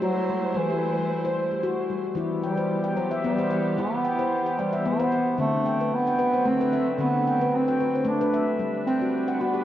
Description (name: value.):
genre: world meditative, meditative tuned percussion.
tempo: 112 BPM.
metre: 3/4.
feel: straight.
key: E minor.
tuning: A4 = 440 Hz.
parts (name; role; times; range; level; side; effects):
mellow bass clarinet; melody; 0.0-9.6 s; E3 to D4; -26 LUFS; right 2 dB; tape echo.
muted studio string section; sustained chords; 0.0-9.6 s; D3 to C5; -33 LUFS; right 2 dB; none.
handpan; arpeggios; 0.0-9.6 s; D3 to G5; -26 LUFS; left 3 dB; tape echo.
room: wet echo chamber reverb, RT60 2.0 s.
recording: worn, warbling old tape, cassette tape, warbly pitch drift.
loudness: -22 LUFS.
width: side -12 dB against mid.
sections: 0.0-2.2 A section; 2.2-9.6 B section.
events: none.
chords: 0.0 Am; 2.2 Em; 5.4 D; 8.6 G.